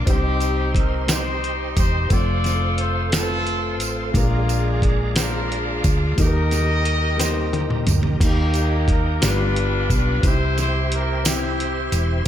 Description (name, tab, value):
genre	slow gospel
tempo	59 BPM (dotted quarters)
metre	6/8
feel	straight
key	Eb major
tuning	A4 = 438 Hz
part	warm horn section	melody	0.0-12.2 s	Ab3 to Eb5	-25 LUFS	left 1 dB	slapback echo
part	clear concert grand piano	accompaniment	0.0-12.3 s	G2 to C5	-27 LUFS	left 3 dB	none
part	bright tonewheel organ	sustained chords	0.0-12.3 s	G4 to C6	-31 LUFS	right 4 dB	slow rotary speaker, overdrive, chorus vibrato
part	hollow-body short-scale fingered electric bass	bass	0.0-12.3 s	Fb1 to Eb2	-22 LUFS	equal	none
part	dusty soul sampler-style drum kit	drums	0.1-12.3 s	crash cymbal, hi-hat, kick drum, snare drum, toms	-22 LUFS	equal	none
part	tambourine	percussion	0.1-12.3 s	none	-31 LUFS	right 8 dB	none
room	light reverb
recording	none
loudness	-18 LUFS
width	side -10 dB against mid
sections	0.0-8.2 A section; 8.2-12.3 A section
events	drum fill 7.2-8.2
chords	0.1 Cm; 2.1 F; 4.1 Bb7; 6.2 Eb; 9.2 G7; 10.2 C